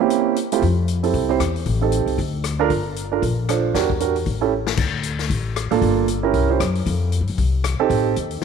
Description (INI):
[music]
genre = jazz, small-group swing and bop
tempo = 231 BPM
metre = 4/4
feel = swing 59% on 8ths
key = F major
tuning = A4 = 440 Hz
[part]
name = warm grand piano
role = accompaniment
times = 0.0-8.1 s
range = A3 to C5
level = -20 LUFS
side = right 9 dB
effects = none
[part]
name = swinging big-band drum kit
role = drums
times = 0.1-8.4 s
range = crash cymbal, hi-hat, kick drum, rim click, snare drum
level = -27 LUFS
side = left 9 dB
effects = none
[part]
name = upright bass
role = bass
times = 0.6-8.4 s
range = G1 to G2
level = -22 LUFS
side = left 2 dB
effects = none
[sound]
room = light reverb, small room reverb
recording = 1960s-style stereo with parts hard left and right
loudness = -18 LUFS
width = side -6 dB against mid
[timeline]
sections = 0.6-8.4 A section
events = drum fill 4.5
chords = 0.0 C7b9; 0.6 Fmaj9; 1.7 Am7b5; 2.2 D5; 2.7 Gm9; 3.7 Em7b5; 4.3 A7; 4.8 D5; 5.8 Gm7; 6.3 C7b9; 6.9 Fsus2; 7.9 Am7b5